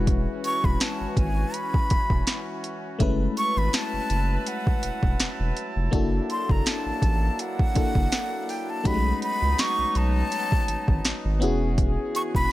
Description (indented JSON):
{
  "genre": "contemporary R&B",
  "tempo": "82 BPM",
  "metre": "4/4",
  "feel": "swing 54% on 16ths",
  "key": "unclear",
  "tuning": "A4 = 440 Hz",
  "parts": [
    { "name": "FM electric piano", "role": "accompaniment", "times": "0.0-12.5 s", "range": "G#3 to B4", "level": "-30 LUFS", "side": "left 4 dB", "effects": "chorus" },
    { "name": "clear brass ensemble", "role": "sustained chords", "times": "0.0-12.5 s", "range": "E3 to A5", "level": "-35 LUFS", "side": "right 2 dB", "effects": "sidechain pumping" },
    { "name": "saturated sub bass", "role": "bass", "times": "0.0-12.5 s", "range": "E1 to C#2", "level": "-26 LUFS", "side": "equal", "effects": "none" },
    { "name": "smooth R&B drum kit", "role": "drums", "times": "0.1-12.5 s", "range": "hi-hat, kick drum, snare drum", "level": "-24 LUFS", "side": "equal", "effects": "overdrive, vintage 12-bit sampler grit" },
    { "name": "breathy jazz flute", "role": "melody", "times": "0.5-12.5 s", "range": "F#5 to C#6", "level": "-28 LUFS", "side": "equal", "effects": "none" }
  ],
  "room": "little or no reverb",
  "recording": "none",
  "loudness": "-22 LUFS",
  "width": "side -16 dB against mid",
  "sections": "0.0-12.5 A section",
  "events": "none",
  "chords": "0.0 E69; 3.0 F#m11; 5.9 F#7alt; 8.9 B13; 11.4 E69",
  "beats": "| 0.07 0.81 1.54 2.27 | 3.00 3.73 4.46 5.20 | 5.93 6.66 7.39 8.12 | 8.85 9.59 10.32 11.05 | 11.78 12.51"
}